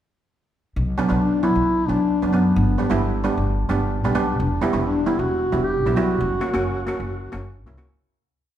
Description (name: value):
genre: calypso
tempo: 132 BPM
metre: 4/4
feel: straight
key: B harmonic minor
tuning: A4 = 440 Hz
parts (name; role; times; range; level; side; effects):
- upright bass; bass; 0.8-7.9 s; E1 to F#2; -24 LUFS; equal; none
- steel pan; accompaniment; 1.0-8.0 s; F#3 to F#4; -22 LUFS; right 2 dB; none
- dark duduk; melody; 1.2-7.8 s; B3 to G4; -22 LUFS; left 1 dB; none
room: wet recital hall reverb, RT60 1.5 s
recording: recorded in a church or concert hall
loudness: -18 LUFS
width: side -11 dB against mid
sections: 0.8-8.0 verse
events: fade-out 6.2-8.0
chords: 0.8 Bm; 2.6 G; 4.4 Em; 6.2 F#